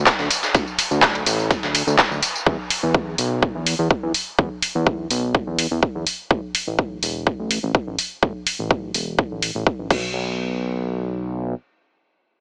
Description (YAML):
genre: progressive house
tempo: 125 BPM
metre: 4/4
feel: straight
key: unclear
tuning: A4 = 440 Hz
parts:
  - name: fat analog bass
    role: bass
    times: 0.0-11.5 s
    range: E1 to E2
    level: -24 LUFS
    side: equal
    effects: sidechain pumping
  - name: big-room dance drum kit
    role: drums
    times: 0.1-10.0 s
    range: crash cymbal, handclaps, hi-hat, tambourine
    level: -20 LUFS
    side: equal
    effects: none
  - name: dusty soul sampler-style drum kit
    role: drums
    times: 0.1-2.3 s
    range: ride cymbal, snare drum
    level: -25 LUFS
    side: equal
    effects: overdrive, high-pass filter on cymbals, high-pass filter on snare, high-pass filter on room
  - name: electronic kick drum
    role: drums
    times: 0.1-10.0 s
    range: none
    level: -20 LUFS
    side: equal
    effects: none
room: light reverb, digital ambience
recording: small speaker sound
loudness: -19 LUFS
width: side -35 dB against mid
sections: 0.0-10.1 A section; 10.1-12.4 B section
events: filter sweep on analog synth bass 0.0-10.1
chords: none